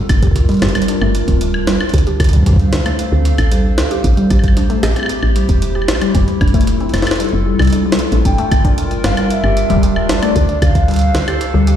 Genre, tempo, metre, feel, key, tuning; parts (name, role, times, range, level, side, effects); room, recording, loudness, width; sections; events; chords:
IDM; 114 BPM; 4/4; straight; G dorian; A4 = 440 Hz
warbly tape-like pad; sustained chords; 0.0-11.8 s; G3 to F5; -21 LUFS; right 1 dB; chorus, built-in reverb, vintage 12-bit sampler grit
woody FM bass; bass; 0.1-11.8 s; D1 to D2; -15 LUFS; equal
electronic kick drum; drums; 0.1-10.9 s; -14 LUFS; equal
jungle sampler-style drum kit; drums; 0.1-11.8 s; hi-hat, snare drum, woodblock; -21 LUFS; equal; tape echo
warbly dusty pluck; arpeggios; 0.2-11.7 s; G3 to G4; -19 LUFS; left 2 dB; chorus, ping-pong delay
warbly nostalgic lead; melody; 8.3-11.1 s; D5 to G5; -20 LUFS; left 1 dB; lush chorus, digital delay
light reverb; played on a big sound system in a bare room, large studio reverb; -12 LUFS; side -10 dB against mid
0.0-11.8 A section
0.0 Gm7; 1.9 Dm7; 4.0 Am7; 6.1 Fmaj7; 8.3 Gm7; 10.4 Dm7